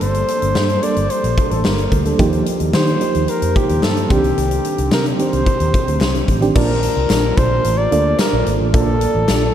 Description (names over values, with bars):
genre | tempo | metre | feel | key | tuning
1980s-style pop | 110 BPM | 4/4 | straight | Bb major | A4 = 440 Hz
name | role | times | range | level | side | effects
warm flugelhorn | melody | 0.0-9.5 s | G4 to D5 | -20 LUFS | left 1 dB | tape echo
FM electric piano with tremolo | accompaniment | 0.0-9.5 s | Eb3 to A5 | -20 LUFS | right 3 dB | none
vintage muted fingered electric bass | bass | 0.0-9.5 s | G1 to Eb3 | -20 LUFS | equal | none
huge arena drum kit | drums | 0.0-9.4 s | crash cymbal, hi-hat, kick drum, snare drum, tambourine | -19 LUFS | left 1 dB | none
group handclap | percussion | 0.6-9.4 s | none | barely audible | none | none
room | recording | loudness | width
moderate huge ambient reverb, RT60 7.7 s | dreamy mix soaked in reverb | -14 LUFS | side -10 dB against mid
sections
0.0-6.6 A section; 6.6-9.5 B section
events
none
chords
0.0 Gmadd9; 2.2 Ebadd9; 4.1 Cmadd9; 6.6 Bbmaj7